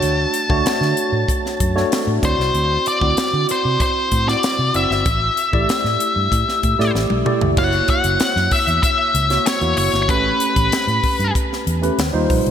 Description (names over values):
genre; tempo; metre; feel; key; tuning
polished 1980s jazz-funk pop; 95 BPM; 4/4; straight; D major; A4 = 440 Hz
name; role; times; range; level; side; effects
octave-fuzz lead guitar; melody; 0.0-11.3 s; B4 to A5; -19 LUFS; left 2 dB; distortion
tine electric piano; accompaniment; 0.0-12.5 s; G3 to D5; -21 LUFS; right 1 dB; medium stereo tremolo, lush chorus
vintage muted fingered electric bass; bass; 0.0-12.5 s; F#1 to D3; -21 LUFS; equal; none
crisp fusion drum kit; drums; 0.0-12.5 s; crash cymbal, hi-hat, kick drum, snare drum, toms; -22 LUFS; equal; none
room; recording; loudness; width
moderate lush hall reverb, RT60 2.6 s; bright 1980s-style digital production; -15 LUFS; side -9 dB against mid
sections
0.0-7.6 A section; 7.6-12.5 B section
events
drum fill 6.9-7.6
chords
0.0 Dmaj7; 2.2 D9; 5.1 A7sus4; 7.6 F#7; 10.1 A9; 12.0 Eb69